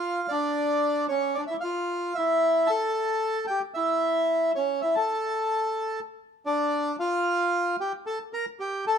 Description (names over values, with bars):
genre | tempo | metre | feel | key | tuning
tango | 112 BPM | 4/4 | rubato | unclear | A4 = 440 Hz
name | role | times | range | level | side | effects
bandoneon | solo | 0.0-9.0 s | C#4 to Bb5 | -24 LUFS | equal | none
room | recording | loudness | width
moderate large studio reverb, RT60 1.2 s | dark, warm production | -24 LUFS | side -7 dB against mid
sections
0.0-9.0 A section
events
none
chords
0.3 N.C.; 2.4 A5; 3.5 Em; 4.6 A; 6.7 Dm; 7.8 Gmadd9